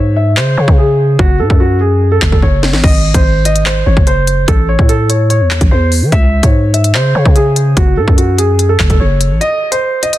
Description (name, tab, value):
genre	hip hop, drill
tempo	146 BPM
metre	4/4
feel	half-time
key	unclear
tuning	A4 = 438 Hz
part	dark concert grand piano	melody	0.0-10.2 s	F#4 to E5	-15 LUFS	equal	low-pass filter, ping-pong delay
part	growling 808-style bass	bass	0.0-9.4 s	F#1 to E3	-12 LUFS	equal	none
part	drill drum kit	drums	0.4-10.2 s	crash cymbal, handclaps, hi-hat, kick drum, snare drum	-12 LUFS	equal	none
room	little or no reverb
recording	dense, heavily limited modern master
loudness	-8 LUFS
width	side -14 dB against mid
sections	0.0-10.2 A section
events	break 0.0-2.8, 9.4-10.2; drum fill 2.4-2.8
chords	0.0 C#5; 1.2 F#m; 2.8 G#; 4.5 A; 6.1 C#5; 7.8 F#m; 9.4 N.C.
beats	0.37 0.78 | 1.19 1.60 2.01 2.42 | 2.84 3.25 3.66 4.07 | 4.48 4.89 5.30 5.71 | 6.12 6.54 6.95 7.36 | 7.77 8.18 8.59 9.00 | 9.41 9.82